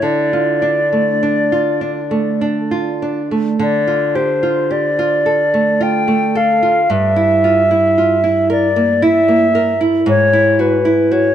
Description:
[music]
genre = romantic duo for flute and classical guitar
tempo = 50-58 BPM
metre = 3/4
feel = rubato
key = D minor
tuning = A4 = 440 Hz
[part]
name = silver concert flute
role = melody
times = 0.0-11.3 s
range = B4 to G5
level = -14 LUFS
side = left 1 dB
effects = none
[part]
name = nylon-string guitar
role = accompaniment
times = 0.0-11.3 s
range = G2 to Bb4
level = -16 LUFS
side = right 2 dB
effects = none
[sound]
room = wet plate reverb, RT60 3.7 s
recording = none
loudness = -12 LUFS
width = side -10 dB against mid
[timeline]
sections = 0.0-3.6 A section; 3.6-11.3 A section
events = none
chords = 0.0 Dm; 6.9 Edim/G; 10.1 E/G#

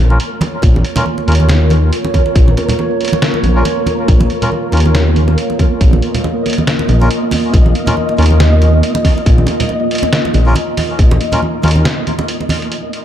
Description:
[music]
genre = deep dubstep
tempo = 139 BPM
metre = 4/4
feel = swing 56% on 16ths, half-time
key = Bb minor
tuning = A4 = 440 Hz
[part]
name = deep dark ambient pad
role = sustained chords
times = 0.1-13.0 s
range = Bb3 to Eb5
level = -19 LUFS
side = equal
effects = chorus, built-in reverb
[part]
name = dark detuned saw bass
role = bass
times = 0.0-11.9 s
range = Bb1 to Eb2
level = -10 LUFS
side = equal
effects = none
[part]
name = flickering grainy texture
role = texture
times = 0.0-13.0 s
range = Bb3 to Eb5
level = -22 LUFS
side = right 1 dB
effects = built-in reverb
[part]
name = melodica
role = stabs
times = 0.1-11.7 s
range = Db4 to Bb4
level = -23 LUFS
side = left 1 dB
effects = low-pass filter, dub echo
[part]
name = congas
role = percussion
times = 0.1-12.6 s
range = none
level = -19 LUFS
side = right 2 dB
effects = dub echo
[part]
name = trip hop sampler-style drum kit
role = drums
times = 0.2-13.0 s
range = hi-hat, snare drum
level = -20 LUFS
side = equal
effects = none
[part]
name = electronic kick drum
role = drums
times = 0.6-11.1 s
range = none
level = -10 LUFS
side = equal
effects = none
[sound]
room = light reverb, digital ambience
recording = dark, warm production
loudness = -10 LUFS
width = side -10 dB against mid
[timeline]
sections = 0.0-12.7 A section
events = filter sweep on melodica 0.0-12.7; break 11.9-12.7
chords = 0.0 Bbm

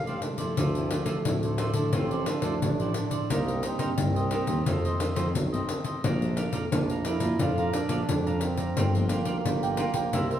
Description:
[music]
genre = samba and choro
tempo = 88 BPM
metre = 4/4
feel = straight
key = D minor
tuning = A4 = 440 Hz
[part]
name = nylon-string guitar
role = accompaniment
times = 0.0-10.4 s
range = F2 to G4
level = -31 LUFS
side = left 2 dB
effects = none
[part]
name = warm tuba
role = bass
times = 0.0-10.4 s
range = G1 to D3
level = -31 LUFS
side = right 1 dB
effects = none
[part]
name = cavaquinho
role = accompaniment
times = 0.1-10.4 s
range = Eb4 to Bb5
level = -35 LUFS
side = right 2 dB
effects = none
[part]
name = pandeiro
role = percussion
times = 0.1-10.4 s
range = none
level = -30 LUFS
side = left 2 dB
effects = none
[part]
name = breathy trombone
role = second line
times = 0.2-10.4 s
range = G3 to F4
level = -32 LUFS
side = right 5 dB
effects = none
[sound]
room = wet large studio reverb, RT60 1.3 s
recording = heard from further back in the room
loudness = -25 LUFS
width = side -10 dB against mid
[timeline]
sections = 0.6-10.4 A section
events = trombone solo 0.6-10.4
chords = 0.0 F69; 0.6 Dm9; 3.3 Cm7; 4.7 F7; 6.0 Bbmaj7; 8.8 Gm7

